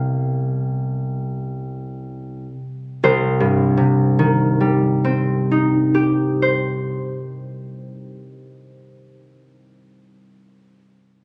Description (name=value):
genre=classical, solo harp piece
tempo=47-57 BPM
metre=4/4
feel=rubato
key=C minor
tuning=A4 = 440 Hz
part: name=concert harp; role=solo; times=0.0-9.2 s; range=C2 to G5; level=-20 LUFS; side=equal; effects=none
room=moderate recital hall reverb, RT60 1.7 s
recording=recorded on a phone in the room, club reverb, compression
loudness=-19 LUFS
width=mono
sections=0.0-3.0 A section; 3.0-7.7 B section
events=slowing down 0.0-3.0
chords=0.0 G7/C; 3.0 Cm